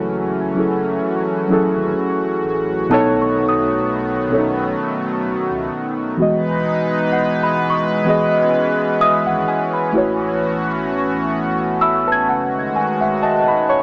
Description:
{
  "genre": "R&B",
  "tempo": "64 BPM",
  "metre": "4/4",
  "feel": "swing 54% on 16ths",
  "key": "F# dorian",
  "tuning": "A4 = 441 Hz",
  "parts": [
    { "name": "muted felt-like synth keys", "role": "accompaniment", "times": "0.0-13.8 s", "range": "B2 to C#6", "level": "-18 LUFS", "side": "equal", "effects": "chorus" },
    { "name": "chorused pulse-width pad", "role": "sustained chords", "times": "0.0-13.8 s", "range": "D#3 to B4", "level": "-20 LUFS", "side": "equal", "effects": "none" },
    { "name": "saturated sub bass", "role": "bass", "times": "0.0-13.8 s", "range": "E1 to C#2", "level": "-33 LUFS", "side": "equal", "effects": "none" },
    { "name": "small celesta", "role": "texture", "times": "0.0-13.0 s", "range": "F#5 to G#6", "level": "-21 LUFS", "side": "equal", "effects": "tape echo" }
  ],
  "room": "moderate lush hall reverb, RT60 2.6 s",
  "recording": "small speaker sound",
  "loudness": "-15 LUFS",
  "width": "side -38 dB against mid",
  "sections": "0.0-13.8 A section",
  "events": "synth keys fill 11.3-13.8",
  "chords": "0.0 F#m9; 2.9 B7; 6.2 Emaj7; 9.9 A69; 12.3 F#m69"
}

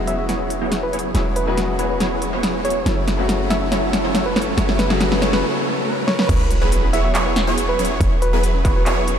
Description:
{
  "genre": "future bass",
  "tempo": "140 BPM",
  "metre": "4/4",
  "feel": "half-time",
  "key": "E major",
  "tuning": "A4 = 440 Hz",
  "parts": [
    { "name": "clear baby grand piano", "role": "accompaniment", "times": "0.0-6.3 s", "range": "C#3 to F#4", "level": "-27 LUFS", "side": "left 4 dB", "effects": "sidechain pumping, tape echo" },
    { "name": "supersaw stab", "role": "riff", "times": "0.0-9.2 s", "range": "F#3 to C#5", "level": "-23 LUFS", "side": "right 1 dB", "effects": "wide subtle chorus, sidechain pumping, low-pass filter, tape echo" },
    { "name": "warm 808-style bass", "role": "bass", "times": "0.0-9.2 s", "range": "E1 to F#1", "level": "-23 LUFS", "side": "equal", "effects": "sidechain pumping" },
    { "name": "riser and sub drop", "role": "sound effects", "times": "2.8-8.0 s", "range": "none", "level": "-30 LUFS", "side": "right 1 dB", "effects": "none" },
    { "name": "soft struck synth lead", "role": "melody", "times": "0.1-8.8 s", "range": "B4 to E5", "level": "-26 LUFS", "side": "equal", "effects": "chorus, cassette tape, sidechain pumping, diffuse ambient delay" },
    { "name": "big-room dance drum kit", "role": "drums", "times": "0.1-9.2 s", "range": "crash cymbal, handclaps, hi-hat, snare drum", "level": "-23 LUFS", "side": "equal", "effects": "overdrive" },
    { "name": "airy dreamy lead", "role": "arpeggios", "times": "6.3-9.2 s", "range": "B5 to C#6", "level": "-30 LUFS", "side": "equal", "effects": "chorus, sidechain pumping, tape echo" },
    { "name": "thumb-piano-like synth pluck", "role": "arpeggios", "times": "6.3-9.1 s", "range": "C#4 to B4", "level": "-31 LUFS", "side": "left 2 dB", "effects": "chorus, sidechain pumping, tape echo" },
    { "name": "electronic kick drum", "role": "drums", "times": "6.3-8.7 s", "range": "none", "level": "-19 LUFS", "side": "equal", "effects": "overdrive" }
  ],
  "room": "moderate huge ambient reverb, RT60 5.9 s",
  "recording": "dreamy mix soaked in reverb",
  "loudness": "-16 LUFS",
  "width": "side -8 dB against mid",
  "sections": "0.0-6.3 A section; 6.3-9.2 B section",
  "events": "build-up 0.0-6.3; drum fill 0.0-5.4, 6.1; filter sweep on supersaw synth 0.0-6.3; break 5.4-6.3; drop 6.3-9.2; impact 6.3-8.0",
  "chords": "0.0 E69; 2.9 F#m7; 6.3 E69"
}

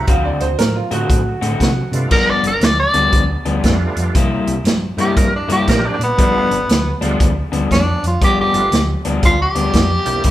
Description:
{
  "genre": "electric blues shuffle",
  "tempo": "118 BPM",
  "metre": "4/4",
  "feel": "swing 64% on 8ths",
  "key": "G mixolydian",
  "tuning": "A4 = 439 Hz",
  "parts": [
    { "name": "growling tenor saxophone", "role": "melody", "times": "0.0-10.3 s", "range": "B3 to D5", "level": "-17 LUFS", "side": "equal", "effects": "none" },
    { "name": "clear upright piano", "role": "second line", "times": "0.0-1.9 s", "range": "F4 to F5", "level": "-22 LUFS", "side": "right 5 dB", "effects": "none" },
    { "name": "tonewheel organ", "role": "accompaniment", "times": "0.0-10.2 s", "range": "G2 to G4", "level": "-27 LUFS", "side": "right 4 dB", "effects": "slow rotary speaker, overdrive, chorus vibrato" },
    { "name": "electric guitar through a small old amp", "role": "riff", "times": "0.1-10.3 s", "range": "G2 to F#4", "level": "-21 LUFS", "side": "left 3 dB", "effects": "spring reverb" },
    { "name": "hollow-body short-scale fingered electric bass", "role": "bass", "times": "0.1-10.3 s", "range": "G1 to C3", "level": "-21 LUFS", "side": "equal", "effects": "none" },
    { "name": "vintage drum kit", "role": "drums", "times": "0.1-10.3 s", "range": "crash cymbal, hi-hat, kick drum, snare drum", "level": "-17 LUFS", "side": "equal", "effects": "none" }
  ],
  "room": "moderate large studio reverb, RT60 1.5 s",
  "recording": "band playing live in one room",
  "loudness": "-13 LUFS",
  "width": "side -14 dB against mid",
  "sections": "0.0-2.1 A section; 2.1-10.3 A section",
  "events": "none",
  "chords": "0.1 D7; 2.1 G7; 4.2 C7; 6.2 G7"
}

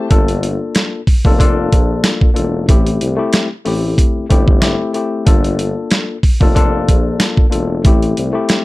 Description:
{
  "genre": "hip hop, boom-bap hip-hop",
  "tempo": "93 BPM",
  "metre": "4/4",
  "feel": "swing 54% on 16ths",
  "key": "G dorian",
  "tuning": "A4 = 441 Hz",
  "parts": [
    { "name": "mellow tine electric piano", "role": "accompaniment", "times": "0.0-8.6 s", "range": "A3 to A4", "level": "-18 LUFS", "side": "left 4 dB", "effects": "cassette tape, high-pass filter, low-pass filter" },
    { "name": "warm tuba", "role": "bass", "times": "0.1-8.3 s", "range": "E1 to C2", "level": "-19 LUFS", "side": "equal", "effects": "none" },
    { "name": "boom bap sampler-style drum kit", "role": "drums", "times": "0.1-8.6 s", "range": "hi-hat, kick drum, snare drum", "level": "-12 LUFS", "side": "equal", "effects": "none" }
  ],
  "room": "little or no reverb",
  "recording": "dark, warm production",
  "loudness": "-12 LUFS",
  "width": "side -19 dB against mid",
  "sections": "0.1-8.6 A section",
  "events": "none",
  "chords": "0.1 Gm9; 2.7 Am7; 5.3 Gm9; 7.8 Am7"
}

